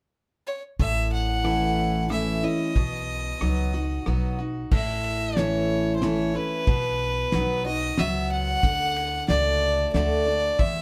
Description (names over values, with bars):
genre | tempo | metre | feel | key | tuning
honky-tonk and classic country | 92 BPM | 3/4 | straight | A major | A4 = 441 Hz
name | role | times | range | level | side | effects
rich fiddle | melody | 0.5-10.8 s | B4 to F#5 | -29 LUFS | equal | none
picked steel-string acoustic guitar | accompaniment | 0.8-10.8 s | E2 to F#4 | -30 LUFS | equal | none
upright bass | bass | 0.8-10.8 s | A1 to E2 | -31 LUFS | equal | none
cloth-damped thuddy drum kit | drums | 0.8-10.7 s | crash cymbal, kick drum, ride cymbal, rim click, snare drum | -27 LUFS | equal | none
room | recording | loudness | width
moderate small room reverb, RT60 0.5 s | band playing live in one room | -25 LUFS | mono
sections
0.8-4.7 A section; 4.7-10.8 B section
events
none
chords
0.0 N.C.; 0.8 A; 2.8 B; 4.7 A; 6.7 B; 8.6 D